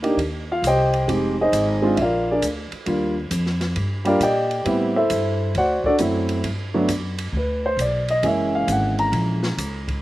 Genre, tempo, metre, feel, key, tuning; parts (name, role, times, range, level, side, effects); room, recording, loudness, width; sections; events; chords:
jazz piano trio; 134 BPM; 4/4; swing 67% on 8ths; A4 = 440 Hz
warm grand piano; melody; 0.0-9.9 s; E3 to A#5; -20 LUFS; equal
upright bass; bass; 0.0-10.0 s; F1 to Bb2; -25 LUFS; equal
open jazz drum kit; drums; 0.0-10.0 s; hi-hat, kick drum, ride cymbal, snare drum; -32 LUFS; right 2 dB
little or no reverb; recorded outdoors, with no room sound; -19 LUFS; side -16 dB against mid
0.0-10.0 A section
0.0 Cm; 1.1 Fm7; 2.0 Bb; 2.9 Ebmaj9; 4.7 Am7; 5.5 D7; 6.4 Gmaj7; 8.2 F#7